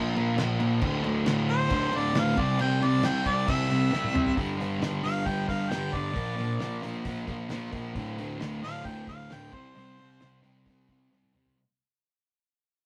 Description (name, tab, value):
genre	garage rock duo or trio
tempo	134 BPM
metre	4/4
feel	straight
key	unclear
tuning	A4 = 440 Hz
part	thick fuzz guitar	riff	0.0-11.6 s	D2 to C4	-30 LUFS	equal	distortion
part	cloth-damped thuddy drum kit	drums	0.2-11.6 s	crash cymbal, hi-hat, kick drum, snare drum, toms	-36 LUFS	equal	none
part	clear harmonica	melody	1.5-10.4 s	C5 to G5	-33 LUFS	equal	overdrive
room	moderate small room reverb, RT60 0.5 s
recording	rough rehearsal-room recording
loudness	-28 LUFS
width	mono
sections	0.0-4.4 A section; 4.4-11.6 B section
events	drum fill 3.9-4.4, 11.1-11.6; fade-out 4.4-11.6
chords	0.0 Bb5; 0.8 D5; 2.4 C; 4.4 G5; 6.2 Bb; 8.0 D5; 9.5 C5